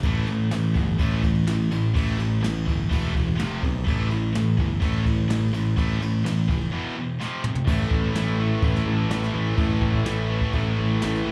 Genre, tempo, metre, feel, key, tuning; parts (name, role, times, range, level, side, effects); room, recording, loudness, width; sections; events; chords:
hard rock; 126 BPM; 4/4; straight; A minor; A4 = 440 Hz
heavy high-gain guitar; riff; 0.0-11.3 s; E2 to A3; -33 LUFS; equal; distortion
tight distorted guitar; riff; 0.0-11.3 s; E2 to A3; -32 LUFS; equal; distortion
modern bright picked electric bass; bass; 0.0-11.3 s; E1 to B1; -26 LUFS; equal
jazz brush drum kit; drums; 0.0-11.2 s; crash cymbal, kick drum, ride cymbal, snare drum, splash cymbal, toms; -29 LUFS; equal
overdriven electric guitar; riff; 7.7-11.3 s; A2 to A3; -32 LUFS; equal; slapback echo
little or no reverb; live gig heard through the venue's PA, club reverb; -24 LUFS; mono
0.0-7.7 A section; 7.7-11.3 B section
break 6.7-7.7; drum fill 7.2-7.7
0.0 A5; 3.4 F5; 3.9 A5; 6.7 E5; 7.2 F5; 7.7 A5